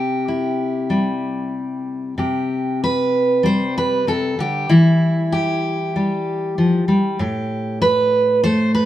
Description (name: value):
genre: folk, solo fingerstyle acoustic guitar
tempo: 96 BPM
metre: 4/4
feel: straight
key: C major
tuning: A4 = 440 Hz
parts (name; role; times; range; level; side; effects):
- fingerpicked steel-string acoustic guitar; solo; 0.0-8.9 s; A2 to C5; -16 LUFS; equal; none
room: moderate studio reverb, RT60 0.6 s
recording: band playing live in one room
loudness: -16 LUFS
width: side -13 dB against mid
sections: 0.0-2.2 A section; 2.2-8.9 A section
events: none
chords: 0.0 C; 2.2 C5; 4.7 Em; 7.2 Am9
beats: 0.26 0.89 1.53 | 2.17 2.80 3.44 4.06 | 4.69 5.32 5.94 6.57 | 7.19 7.81 8.44